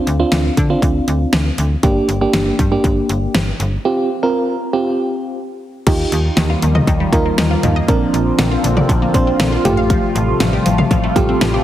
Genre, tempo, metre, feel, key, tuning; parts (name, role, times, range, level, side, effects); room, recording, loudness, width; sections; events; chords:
synth-pop; 119 BPM; 4/4; straight; A4 = 439 Hz
FM electric piano with auto-pan; accompaniment; 0.0-11.6 s; A3 to C5; -18 LUFS; right 2 dB
slap-like FM bass; bass; 0.1-11.6 s; G1 to D3; -18 LUFS; equal
pop drum kit; drums; 0.1-11.5 s; crash cymbal, hi-hat, kick drum, snare drum, toms; -18 LUFS; equal
phased analog pad; sustained chords; 5.9-11.6 s; C3 to F4; -20 LUFS; equal; phaser, chorus
wide unison pluck; arpeggios; 5.9-11.6 s; D3 to F5; -22 LUFS; left 2 dB; phaser, analog delay
moderate lush hall reverb, RT60 2.0 s; heavily compressed radio sound, multiband compression; -13 LUFS; side -12 dB against mid
0.0-5.9 A section; 5.9-11.6 B section
break 3.9-5.9
0.0 Dm7; 1.8 Gm; 3.9 Fsus2; 5.9 Ebadd9; 7.9 Bbadd9; 9.6 Fadd9/A